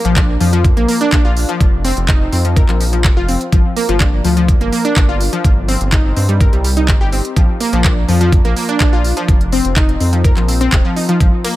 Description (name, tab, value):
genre	progressive house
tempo	125 BPM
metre	4/4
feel	straight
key	unclear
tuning	A4 = 440 Hz
part	analog pluck	arpeggios	0.0-11.5 s	F3 to Bb4	-16 LUFS	left 1 dB	chorus, vintage 12-bit sampler grit, sidechain pumping, dub echo
part	round analog bass	bass	0.0-11.3 s	Eb1 to G2	-16 LUFS	equal	sidechain pumping
part	pop drum kit	drums	0.0-11.5 s	handclaps, hi-hat, ride cymbal	-21 LUFS	right 1 dB	none
part	electronic kick drum	drums	0.2-11.3 s	none	-12 LUFS	equal	none
room	little or no reverb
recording	none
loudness	-11 LUFS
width	side -16 dB against mid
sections	0.0-11.6 A section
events	none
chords	0.0 Bb; 1.6 Fsus4; 3.5 G7(no3); 5.4 Eb6/G (rootless); 7.4 Bb; 9.3 F7sus4